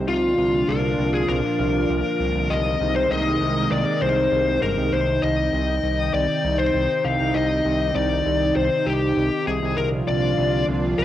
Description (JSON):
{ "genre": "synthwave", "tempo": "99 BPM", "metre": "4/4", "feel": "straight", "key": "C minor", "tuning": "A4 = 440 Hz", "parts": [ { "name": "lush unison pad", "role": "sustained chords", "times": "0.0-11.0 s", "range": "Bb2 to G5", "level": "-24 LUFS", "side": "right 2 dB", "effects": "chorus" }, { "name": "fat analog bass", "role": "bass", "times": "0.0-11.0 s", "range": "G1 to C2", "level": "-25 LUFS", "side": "right 1 dB", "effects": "none" }, { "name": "fuzz lead guitar", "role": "melody", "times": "0.1-11.0 s", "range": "F4 to F5", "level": "-22 LUFS", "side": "left 4 dB", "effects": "distortion, analog delay" } ], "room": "wet spring reverb, RT60 1.2 s", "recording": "home recording on cassette", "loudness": "-19 LUFS", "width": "side -12 dB against mid", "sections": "0.0-4.9 A section; 4.9-11.0 B section", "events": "none", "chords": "0.1 Bb/C; 2.5 Abadd9/C; 4.9 Cm; 9.8 Bb/C" }